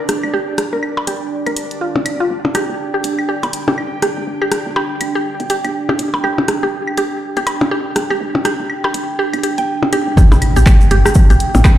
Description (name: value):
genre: minimal techno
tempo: 122 BPM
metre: 4/4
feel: swing 59% on 16ths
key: G minor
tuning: A4 = 440 Hz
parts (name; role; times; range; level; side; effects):
- mallet-like synth pluck; riff; 0.0-11.7 s; F4 to G5; -21 LUFS; right 1 dB; chorus, phaser, sidechain pumping, dub echo
- bubbling stepped-filter texture; texture; 0.0-10.2 s; D4 to G5; -29 LUFS; right 2 dB; chorus, built-in reverb, sidechain pumping
- deep dark ambient pad; texture; 0.0-11.8 s; D4 to G5; -23 LUFS; right 2 dB; chorus, built-in reverb, sidechain pumping
- woody FM bass; bass; 0.1-11.6 s; G1 to Bb1; -18 LUFS; equal; sidechain pumping, high-pass filter
- punchy analog drum machine; drums; 0.1-11.8 s; handclaps, hi-hat; -25 LUFS; equal; overdrive
- electronic rim click, claves and percussion blips; percussion; 0.1-11.8 s; none; -20 LUFS; left 2 dB; dub echo
- electronic kick drum; drums; 10.2-11.8 s; none; -8 LUFS; equal; overdrive
- egg shaker; percussion; 10.2-11.8 s; none; -31 LUFS; left 2 dB; none
- impact; sound effects; 10.2-11.8 s; none; -17 LUFS; equal; none
room: light reverb, digital ambience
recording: played on a big sound system in a bare room, large studio reverb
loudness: -14 LUFS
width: side -13 dB against mid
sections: 0.0-10.2 A section; 10.2-11.8 B section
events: drop 10.2-11.8; impact 10.2-11.8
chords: 0.0 G5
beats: | 0.34 0.83 1.32 1.81 | 2.30 2.79 3.29 3.78 | 4.27 4.76 5.25 5.75 | 6.24 6.73 7.22 7.71 | 8.21 8.70 9.19 9.68 | 10.17 10.66 11.15 11.65